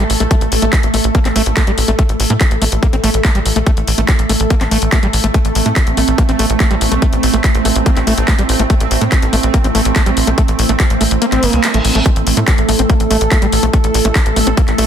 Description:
psychedelic trance; 143 BPM; 4/4; straight; A minor; A4 = 440 Hz
pulsing gated texture; sustained chords; 0.0-14.9 s; A3 to A4; -18 LUFS; right 3 dB; chorus, built-in reverb, sidechain pumping
screaming distorted acid line; riff; 0.0-14.8 s; G3 to C4; -20 LUFS; moving between left 4 dB and right 4 dB; distortion, chorus, auto-pan, sidechain pumping, dub echo
tight sequencer bass; bass; 0.0-14.8 s; G1 to A2; -16 LUFS; equal
granular cloud pad; texture; 0.1-14.9 s; E4 to E5; -31 LUFS; left 2 dB
drum and bass drum kit; drums; 0.1-14.9 s; handclaps, hi-hat; -19 LUFS; left 2 dB; overdrive
electronic kick drum; drums; 0.3-14.7 s; -13 LUFS; equal; overdrive
reverse cymbal; sound effects; 11.4-12.1 s; -23 LUFS; right 1 dB
light reverb, digital ambience; dense, heavily limited modern master; -11 LUFS; side -9 dB against mid
0.0-14.9 A section
kick drops out 11.2-12.1; reverse cymbal 11.4-12.1
0.0 A5
| 0.31 0.73 1.15 1.57 | 1.99 2.41 2.83 3.25 | 3.67 4.08 4.50 4.92 | 5.34 5.76 6.18 6.60 | 7.02 7.44 7.86 8.28 | 8.70 9.12 9.54 9.96 | 10.38 10.80 11.22 11.64 | 12.06 12.48 12.90 13.31 | 13.73 14.15 14.57

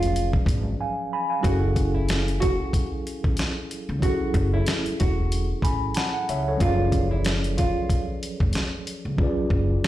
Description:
hip hop, boom-bap hip-hop; 93 BPM; 4/4; swing 56% on 16ths; F# minor; A4 = 440 Hz
nylon-string guitar; melody; 0.0-8.0 s; E4 to F#4; -28 LUFS; right 2 dB; high-pass filter, low-pass filter, digital delay
mellow tine electric piano; accompaniment; 0.0-9.9 s; E#3 to B5; -28 LUFS; equal; medium stereo tremolo, high-pass filter, low-pass filter
upright bass; bass; 0.0-9.8 s; E1 to C#2; -26 LUFS; equal
dusty soul sampler-style drum kit; drums; 0.0-9.9 s; hi-hat, kick drum, snare drum; -24 LUFS; equal
little or no reverb; played on a big sound system in a bare room, stone room reverb; -22 LUFS; side -14 dB against mid
0.0-1.4 A section; 1.4-9.9 B section
break 0.8-1.4; hi-hats muted 9.2-9.9
0.0 C#7b9; 1.4 F#m7; 6.6 C#7b9
0.15 0.80 | 1.45 2.09 2.73 3.38 | 4.03 4.67 5.32 5.96 | 6.61 7.25 7.90 8.54 | 9.19 9.83

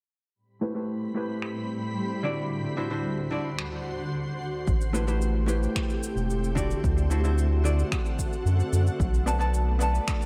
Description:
sunset chillout; 111 BPM; 4/4; straight; A dorian; A4 = 439 Hz
shimmering ambient pad; sustained chords; 1.0-10.3 s; D2 to B5; -35 LUFS; equal; chorus, built-in reverb
vintage hollow-body jazz guitar; accompaniment; 0.6-10.3 s; D3 to A5; -32 LUFS; equal; low-pass filter, delay
electronic finger snaps and cabasa; drums; 1.4-10.3 s; -39 LUFS; equal; low-pass filter on snare, low-pass filter on perc, low-pass filter on room
round analog bass; bass; 4.7-10.0 s; E1 to F#2; -27 LUFS; equal
electronic kick drum; drums; 4.7-10.2 s; -30 LUFS; equal
light reverb; dark, warm production; -27 LUFS; mono
0.3-4.7 A section; 4.7-10.3 B section
filter sweep on hollow-body jazz guitar 0.3-4.7
0.3 Am9; 2.5 D7; 4.7 Am9; 6.8 D7; 9.0 Bm7
| 0.35 0.89 1.43 1.97 | 2.51 3.05 3.59 4.13 | 4.67 5.21 5.76 6.30 | 6.84 7.38 7.92 8.46 | 9.00 9.54 10.08

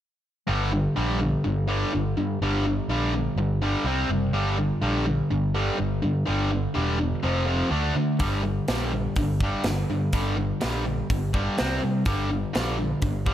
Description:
hard rock; 124 BPM; 4/4; straight; G minor; A4 = 441 Hz
sludgy distorted guitar; riff; 0.5-13.3 s; F2 to D4; -25 LUFS; equal; overdrive
picked electric bass; bass; 0.5-13.3 s; E1 to D3; -27 LUFS; equal
tight metal drum kit; drums; 8.2-13.3 s; hi-hat, kick drum, snare drum; -29 LUFS; equal
light reverb, small room ambience; -23 LUFS; side -11 dB against mid
0.5-13.3 A section
0.5 Gm; 3.9 C5; 4.3 Gm; 7.2 F5; 7.7 D5; 8.2 Gm; 11.6 C5; 12.1 Gm
| 0.48 0.96 1.45 1.93 | 2.41 2.90 3.38 3.86 | 4.34 4.83 5.31 5.79 | 6.27 6.76 7.24 7.72 | 8.20 8.69 9.17 9.65 | 10.13 10.61 11.10 11.58 | 12.06 12.54 13.02

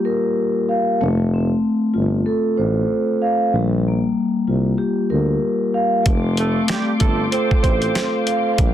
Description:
hip hop, boom-bap hip-hop; 95 BPM; 4/4; swing 58% on 16ths; F major; A4 = 440 Hz
vibraphone with soft mallets; accompaniment; 0.0-8.7 s; G3 to F5; -18 LUFS; left 1 dB; cassette tape, high-pass filter, low-pass filter
mellow tuba; bass; 1.0-8.7 s; F1 to D2; -21 LUFS; right 1 dB
warm studio string section; sustained chords; 6.1-8.7 s; G4 to D6; -29 LUFS; left 3 dB; high-pass filter, low-pass filter
boom bap sampler-style drum kit; drums; 6.1-8.7 s; hi-hat, kick drum, snare drum; -18 LUFS; equal
mellow horn section; stabs; 6.4-8.1 s; G3 to C5; -24 LUFS; right 5 dB; high-pass filter, low-pass filter, ping-pong delay
light reverb; dense, heavily limited modern master; -16 LUFS; side -11 dB against mid
0.0-6.1 A section; 6.1-8.7 B section
0.0 Bb5; 1.0 F; 3.5 Bb5; 6.1 F6
0.38 | 1.01 1.64 2.27 2.90 | 3.53 4.17 4.80 5.43 | 6.06 6.69 7.32 7.95 | 8.59

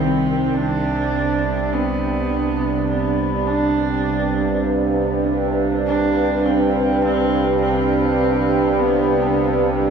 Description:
dark ambient drone; 51 BPM; 4/4; straight; A4 = 441 Hz
rich horsehead fiddle; melody; 0.0-9.7 s; B3 to D4; -22 LUFS; equal; analog delay
dark analog pad; sustained chords; 0.0-9.9 s; Eb3 to F5; -20 LUFS; right 2 dB; chorus
dark detuned synth bell; arpeggios; 0.0-9.9 s; barely audible
bowed-like drone; drone; 0.0-9.9 s; C2 to C3; -22 LUFS; right 1 dB; built-in reverb
wet spring reverb, RT60 2.4 s; echo-heavy mix, cassette tape, studio reverb; -16 LUFS; side -6 dB against mid
0.0-9.9 A section
0.0 Cm; 0.5 G/C
| 0.53 1.71 2.89 4.06 | 5.24 6.42 7.59 8.77

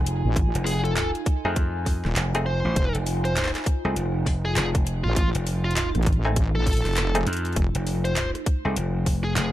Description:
glitch hop; 100 BPM; 4/4; swing 62% on 16ths; F minor; A4 = 440 Hz
dark analog pad; sustained chords; 0.0-9.5 s; A3 to G#5; -32 LUFS; equal; chorus, phaser, vintage 12-bit sampler grit, sidechain pumping
gritty slap bass; bass; 0.0-9.5 s; F1 to F2; -25 LUFS; equal; overdrive
drum and bass drum kit; drums; 0.0-9.5 s; handclaps, hi-hat, rim click; -30 LUFS; equal; overdrive
wobble bass; bass; 0.2-7.7 s; Eb1 to A1; -23 LUFS; equal; chorus, tube saturation
electronic kick drum; drums; 0.4-9.2 s; -23 LUFS; equal; overdrive
bluesy overdriven lead guitar; melody; 0.7-9.5 s; F4 to C5; -31 LUFS; equal; distortion, tape echo
muted clav; stabs; 1.4-8.8 s; A3 to G#5; -30 LUFS; equal; vintage 12-bit sampler grit, sidechain pumping, tape echo
digital ambience; -21 LUFS; side -14 dB against mid
0.0-9.5 A section
0.0 F7#9
| 0.36 0.96 1.56 2.16 | 2.76 3.36 3.96 4.56 | 5.16 5.76 6.36 6.96 | 7.56 8.16 8.76 9.36

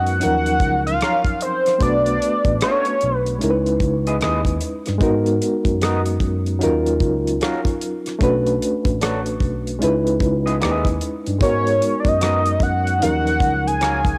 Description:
R&B, neo-soul; 75 BPM; 4/4; swing 62% on 16ths; G# minor; A4 = 441 Hz
fat analog lead; melody; 0.0-3.4, 11.4-14.2 s; B#4 to G#5; -22 LUFS; equal; chorus, phaser, cassette tape
barky reed electric piano; accompaniment; 0.0-14.2 s; E#3 to B4; -24 LUFS; equal; overdrive, medium tremolo, cassette tape
barky tine electric piano; bass; 0.0-14.1 s; A1 to G#2; -26 LUFS; equal; phaser
damped 70s drum kit; drums; 0.1-14.2 s; hi-hat, kick drum, rim click; -25 LUFS; equal
electric guitar through a small old amp; second line; 1.0-14.0 s; F#3 to F#5; -28 LUFS; equal; cassette tape
light reverb, small room ambience; home recording on cassette; -19 LUFS; mono
0.0-14.2 A section
0.2 D#m9; 1.8 Bm9; 3.4 C#m9; 5.0 G#m9; 6.6 D#m9; 8.2 Bm9; 9.8 C#m9; 11.4 G#m9; 13.0 D#m9
0.20 1.00 | 1.80 2.60 3.40 4.21 | 5.00 5.80 6.61 7.41 | 8.21 9.01 9.80 10.61 | 11.40 12.21 13.01 13.80

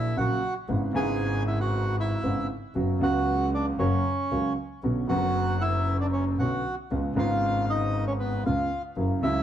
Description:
tango; 116 BPM; 4/4; rubato; A4 = 440 Hz
bandoneon; melody; 0.0-9.4 s; B3 to G#5; -29 LUFS; right 1 dB; tape echo
clear concert grand piano; accompaniment; 0.0-9.4 s; F#1 to F#4; -28 LUFS; right 1 dB
dark double bass; bass; 0.0-9.4 s; F#1 to C#2; -29 LUFS; equal
wet club reverb, RT60 0.6 s; heard from further back in the room; -24 LUFS; side -10 dB against mid
0.0-9.4 A section
0.0 F#/A#; 0.7 C#m7/G#; 2.8 F#sus4; 3.8 F#; 4.8 Bmadd9; 6.9 C#7
0.17 | 0.69 1.20 1.72 2.24 | 2.75 3.27 3.79 4.31 | 4.83 5.35 5.87 6.39 | 6.91 7.42 7.94 8.45 | 8.97

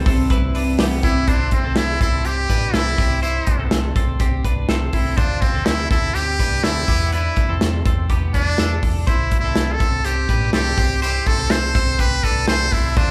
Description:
jangly indie pop; 123 BPM; 4/4; straight; C major; A4 = 441 Hz
picked twelve-string acoustic guitar; accompaniment; 0.0-1.3 s; C3 to B4; -25 LUFS; equal
twelve-string electric guitar; arpeggios; 0.0-13.1 s; B3 to C5; -30 LUFS; equal
hollow-body short-scale fingered electric bass; bass; 0.0-13.1 s; A1 to E2; -25 LUFS; equal
modern studio drum kit; drums; 0.1-13.1 s; hi-hat, kick drum, snare drum; -22 LUFS; equal
trumpet with metal mute; melody; 1.0-13.1 s; C4 to C5; -24 LUFS; equal
moderate large studio reverb, RT60 1.2 s; band playing live in one room; -19 LUFS; mono
0.0-1.3 A section; 1.3-13.1 B section
0.0 Cmaj7; 1.3 C6; 3.0 Am7/C; 5.2 Dm7; 6.9 Em7; 9.1 C6; 10.8 Am7/C
0.31 0.80 | 1.28 1.77 2.25 2.74 | 3.23 3.71 4.20 4.69 | 5.18 5.66 6.15 6.64 | 7.12 7.61 8.10 8.59 | 9.07 9.56 10.05 10.53 | 11.02 11.51 11.99 12.48 | 12.97

